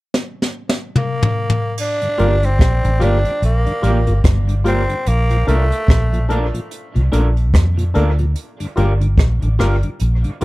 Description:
roots reggae; 73 BPM; 4/4; swing 59% on 16ths; G minor; A4 = 440 Hz
jazz brush drum kit; drums; 0.1-10.4 s; crash cymbal, hi-hat, kick drum, rim click, snare drum, toms; -17 LUFS; equal
growling tenor saxophone; melody; 1.0-6.3 s; A3 to D4; -22 LUFS; equal; tape echo, plate reverb
mellow tonewheel organ; accompaniment; 2.0-10.4 s; G2 to F4; -26 LUFS; left 1 dB; slow rotary speaker, plate reverb
electric guitar through a small old amp; accompaniment; 2.2-10.4 s; Bb3 to D5; -28 LUFS; right 4 dB; tape echo, plate reverb
percussive organ stab; stabs; 2.2-10.4 s; D4 to Bb4; -24 LUFS; left 3 dB; chorus, plate reverb
vintage muted fingered electric bass; bass; 2.2-10.4 s; G1 to F2; -15 LUFS; equal
light reverb; dark, warm production; -14 LUFS; side -20 dB against mid
0.0-1.8 A section; 1.8-10.4 B section
drum fill 0.1-1.8
0.0 N.C.; 1.8 Gm7; 5.1 Bbmaj7; 8.4 Gm7
0.13 0.95 | 1.78 2.60 3.42 4.25 | 5.07 5.89 6.71 7.54 | 8.36 9.18 10.00

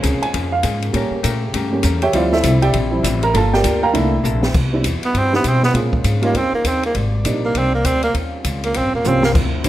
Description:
jazz, big band swing; 200 BPM; 4/4; swing 61% on 8ths; A4 = 441 Hz
dark baby grand piano; accompaniment; 0.0-9.7 s; F3 to Bb5; -20 LUFS; right 2 dB
hollow-body jazz guitar; accompaniment; 0.0-4.4, 9.3-9.7 s; C3 to C5; -25 LUFS; left 6 dB
warm trombone section; sustained chords; 0.0-9.7 s; B2 to D5; -29 LUFS; left 1 dB
upright bass; bass; 0.0-9.7 s; Eb1 to B2; -20 LUFS; equal
open jazz drum kit; drums; 0.0-9.7 s; crash cymbal, hi-hat, kick drum, ride cymbal, snare drum, toms; -23 LUFS; equal
warm tenor saxophone; melody; 5.1-9.3 s; Bb3 to C4; -19 LUFS; right 2 dB
light reverb; -15 LUFS; side -14 dB against mid
0.0-4.5 A section; 4.5-9.7 A section
grand piano solo 0.0-4.5; drum fill 4.2, 9.0-9.3; tenor saxophone solo 4.5-9.7
0.0 Bbm9; 0.9 A7b9; 2.1 Dm11; 3.3 Gm7; 3.9 C13; 4.5 Cmaj7; 5.7 Bbm7; 6.3 Eb9; 6.9 Abmaj9#11; 8.1 Eb13
0.03 0.34 0.64 | 0.94 1.24 1.54 1.84 | 2.14 2.44 2.74 3.04 | 3.34 3.64 3.94 4.24 | 4.54 4.84 5.14 5.44 | 5.74 6.04 6.34 6.64 | 6.94 7.24 7.54 7.84 | 8.14 8.44 8.74 9.04 | 9.34 9.64

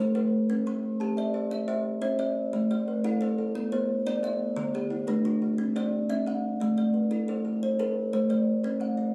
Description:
southern african traditional; 118 BPM (dotted quarters); 12/8; straight; A equiheptatonic; A4 = 440 Hz
kalimba; arpeggios; 0.0-9.1 s; D3 to C6+43c; -28 LUFS; equal
kalimba; arpeggios; 0.0-9.1 s; D3 to A5; -36 LUFS; equal
moderate studio reverb, RT60 0.5 s; recorded on a phone in the room, club reverb; -28 LUFS; mono
0.0-2.5 A section; 2.5-9.1 B section
0.5 C; 2.5 Am; 3.6 Bm; 4.6 D; 5.6 C; 6.6 Am; 8.6 N.C.
| 0.49 1.00 1.51 2.02 | 2.53 3.04 3.55 4.06 | 4.57 5.08 5.59 6.10 | 6.61 7.12 7.62 8.13 | 8.64

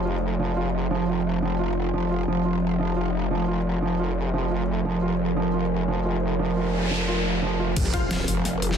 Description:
dark technical drum and bass; 175 BPM; 4/4; straight; F minor; A4 = 441 Hz
deep dark ambient pad; sustained chords; 0.0-8.8 s; F3 to Ab5; -27 LUFS; right 3 dB; chorus, built-in reverb, sidechain pumping
growl bass; bass; 0.0-8.8 s; F1; -27 LUFS; left 1 dB; chorus, tube saturation
felt-muted upright piano; arpeggios; 0.1-7.7 s; F3 to F4; -28 LUFS; right 2 dB; sidechain pumping, tape echo
noise sweep and impact; sound effects; 6.6-8.8 s; -29 LUFS; left 1 dB
dubstep drum kit; drums; 7.8-8.8 s; crash cymbal, hi-hat, snare drum; -28 LUFS; left 1 dB; overdrive, small room reverb
electronic kick drum; drums; 7.8-8.0 s; -26 LUFS; left 1 dB; overdrive, small room reverb
orchestra-hit-like synth stab; stabs; 7.9-8.8 s; F4 to F5; -33 LUFS; left 4 dB; built-in reverb, tape echo
light reverb; dense, heavily limited modern master; -22 LUFS; side -8 dB against mid
0.0-7.8 A section; 7.8-8.8 B section
filter sweep on ambient pad 0.0-7.8; noise sweep 6.6-7.8; drop 7.8-8.8; impact 7.8-8.8
0.0 F5
0.22 0.56 | 0.91 1.25 1.59 1.94 | 2.28 2.62 2.96 3.31 | 3.65 3.99 4.34 4.68 | 5.02 5.37 5.71 6.05 | 6.39 6.74 7.08 7.42 | 7.76 8.11 8.45

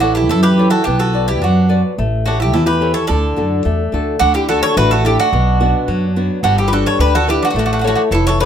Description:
greek folk, Greek bouzouki band; 108 BPM; 2/4; straight; D major; A4 = 440 Hz
Greek bouzouki; melody; 0.0-8.5 s; F#4 to D5; -18 LUFS; right 2 dB; plate reverb
Greek bouzouki; second line; 0.0-8.4 s; D4 to A4; -22 LUFS; right 4 dB
flamenco guitar; accompaniment; 0.0-8.5 s; B2 to D5; -18 LUFS; left 2 dB
upright bass; bass; 0.0-8.5 s; F1 to F#2; -16 LUFS; equal
light reverb; -12 LUFS; side -8 dB against mid
0.0-4.2 A section; 4.2-8.5 B section
0.0 A; 0.9 Bm; 2.0 A7; 3.1 D; 5.3 Bm; 6.4 G; 7.5 A
0.30 | 0.86 1.41 | 1.97 2.53 | 3.09 3.65 | 4.20 4.76 | 5.32 5.88 | 6.43 6.99 | 7.55 8.11

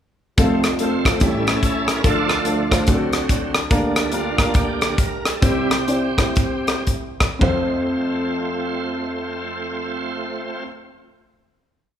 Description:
uptempo gospel; 108-144 BPM; 4/4; swing 63% on 8ths; F major; A4 = 442 Hz
dark upright piano; accompaniment; 0.4-10.7 s; F1 to D5; -23 LUFS; left 1 dB
bright tonewheel organ; sustained chords; 0.4-10.6 s; A2 to C5; -24 LUFS; right 2 dB; slow rotary speaker, chorus vibrato
mellow French horn section; sustained chords; 0.4-10.7 s; D3 to A4; -32 LUFS; right 3 dB
tight funk drum kit; drums; 0.4-7.6 s; hi-hat, kick drum, rim click, toms; -19 LUFS; equal
moderate recital hall reverb, RT60 1.5 s; recorded in a church or concert hall; -18 LUFS; side -9 dB against mid
0.4-7.4 breakdown; 7.4-11.9 final chord
tonewheel organ solo 0.4-7.4; slowing down 3.7-7.4
0.4 F; 1.2 A7; 2.0 Dm; 2.9 D7; 3.7 Gm/D; 5.4 C; 7.4 F
| 0.37 0.79 1.21 1.62 | 2.04 2.46 2.87 3.29 | 3.70 4.12 4.54 4.98 | 5.42 5.88 6.37 6.88 | 7.41 7.97 8.53 9.08 | 9.64 10.20

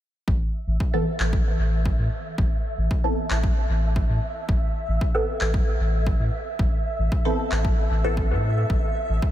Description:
dub techno; 114 BPM; 4/4; straight; A minor; A4 = 440 Hz
warm sub bass; bass; 0.3-9.2 s; A1 to A2; -23 LUFS; equal; sidechain pumping
electronic kick drum; drums; 0.3-9.3 s; -24 LUFS; equal; studio ambience
flickering grainy texture; texture; 0.6-9.3 s; E5; -33 LUFS; right 1 dB; built-in reverb, lush chorus, sidechain pumping
filtered dub chord stab; stabs; 0.9-8.2 s; E3 to A4; -29 LUFS; equal; phaser, cassette tape, sidechain pumping, dub echo
electronic handclaps; drums; 1.2-7.6 s; -36 LUFS; left 1 dB; studio ambience, dub echo
light reverb; -21 LUFS; side -12 dB against mid
0.3-9.3 A section
0.3 A5
| 0.28 0.80 1.33 1.86 | 2.38 2.91 3.44 3.96 | 4.49 5.01 5.54 6.07 | 6.59 7.12 7.65 8.17 | 8.70 9.22

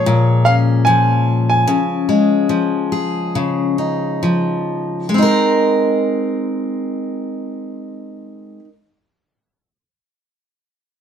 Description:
acoustic pop; 65-76 BPM; 4/4; swing 60% on 16ths; Ab major; A4 = 440 Hz
bright upright piano; melody; 0.0-4.2 s; Db5 to Ab5; -18 LUFS; right 2 dB
picked steel-string acoustic guitar; accompaniment; 0.0-8.7 s; Bb2 to Bb4; -15 LUFS; left 1 dB
wet studio reverb, RT60 0.7 s; band playing live in one room; -14 LUFS; side -8 dB against mid
0.0-5.1 A section; 5.1-8.8 B section
slowing down 0.0-5.1
0.0 Bbm7; 1.7 Dbadd9; 5.1 Abadd9
0.05 0.85 | 1.67 2.50 3.35 4.23 | 5.13 6.05 6.97 7.89

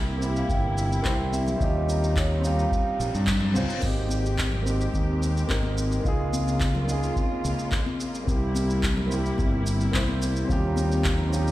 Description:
sunset chillout; 108 BPM; 4/4; straight; Ab major; A4 = 440 Hz
dark concert grand piano; accompaniment; 0.0-11.5 s; Bb3 to C5; -30 LUFS; right 1 dB; auto-pan, tape echo
muted studio string section; sustained chords; 0.0-11.5 s; C3 to G4; -33 LUFS; equal
growling fingered electric bass; bass; 0.0-11.5 s; G1 to G2; -26 LUFS; equal; overdrive
vibraphone with medium mallets; melody; 0.2-3.0 s; Db5 to G5; -31 LUFS; right 2 dB; tape echo
deep house drum kit; drums; 0.2-11.5 s; crash cymbal, handclaps, shaker; -34 LUFS; equal
electronic kick drum; drums; 0.5-11.2 s; -28 LUFS; equal; overdrive
congas; percussion; 1.3-11.3 s; -34 LUFS; left 4 dB
reverse cymbal; sound effects; 3.0-3.8 s; -37 LUFS; left 5 dB
light reverb, studio reverb; played on a big sound system in a bare room, stone room reverb; -22 LUFS; side -15 dB against mid
0.0-3.8 A section; 3.8-11.5 A section
reverse cymbal 3.0-3.8; band accent 3.3
0.0 C7; 1.6 Eb13; 3.8 Abmaj7; 6.0 Db6; 8.3 C7; 10.5 Eb13
0.49 1.05 | 1.60 2.16 2.71 3.27 | 3.83 4.38 4.94 5.49 | 6.05 6.60 7.16 7.71 | 8.27 8.83 9.38 9.94 | 10.49 11.05

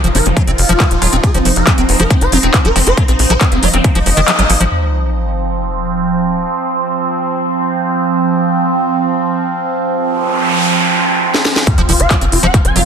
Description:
psychedelic trance; 138 BPM; 4/4; straight; A4 = 439 Hz
swarming rave lead; melody; 0.0-4.6, 11.7-12.8 s; F3 to Ab5; -18 LUFS; equal; chorus, phaser, sidechain pumping, tape echo
evolving wavetable pad; sustained chords; 0.0-12.9 s; F3 to Eb4; -16 LUFS; right 3 dB; phaser, built-in reverb, sidechain pumping
liquid acid bass; riff; 0.0-4.6, 11.8-12.8 s; Eb3 to C4; -19 LUFS; moving between left 2 dB and right 4 dB; chorus, auto-pan, sidechain pumping, dub echo
tight sequencer bass; bass; 0.0-4.7, 11.8-12.8 s; Eb1 to Bb1; -15 LUFS; equal
techno drum kit; drums; 0.0-4.7, 11.3-12.8 s; handclaps, hi-hat, snare drum; -16 LUFS; left 1 dB; overdrive
electronic kick drum; drums; 0.4-3.9, 11.7-12.6 s; -13 LUFS; equal; distortion, overdrive
metallic wobble bass; second line; 1.0-4.6 s; Bb3 to F4; -28 LUFS; left 5 dB
sub drop and noise sweep; sound effects; 4.7-6.5, 10.1-12.9 s; -17 LUFS; equal
moderate digital room reverb, RT60 1.2 s; dense, heavily limited modern master; -11 LUFS; side -7 dB against mid
0.0-4.7 A section; 4.7-11.7 B section; 11.7-12.9 A section
drop 0.0-4.7, 11.7-12.9; kick drops out 4.3-4.7; band accent 4.3; impact 4.7-6.5, 11.7-12.9; noise sweep 10.1-11.7; drum fill 11.3-11.7
0.0 F5
0.37 0.80 | 1.24 1.67 2.10 2.54 | 2.98 3.41 3.84 4.28 | 4.71 5.15 5.58 6.02 | 6.45 6.89 7.32 7.76 | 8.19 8.63 9.06 9.50 | 9.93 10.37 10.80 11.24 | 11.67 12.11 12.54

